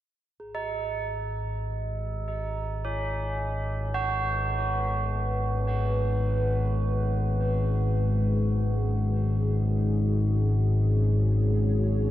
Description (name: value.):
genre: dark ambient drone.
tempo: free time.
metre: none.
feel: none.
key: G# minor.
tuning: A4 = 443 Hz.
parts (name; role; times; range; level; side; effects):
dark analog pad; sustained chords; 4.3-12.1 s; C#4 to C#5; -34 LUFS; equal; chorus.
deep rumbling drone; drone; 0.7-12.1 s; G#1 to G#2; -25 LUFS; left 1 dB; built-in reverb.
quartz singing bowl; texture; 0.4-12.1 s; G#4; -49 LUFS; left 1 dB; none.
tubular bells; arpeggios; 0.5-12.1 s; C#4 to F#4; -33 LUFS; right 4 dB; tape echo.
room: moderate lush hall reverb, RT60 2.8 s.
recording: dreamy mix soaked in reverb.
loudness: -24 LUFS.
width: side -13 dB against mid.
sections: 0.4-12.1 A section.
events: fade-in on analog synth pad 0.4-12.1.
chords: 0.4 G#m.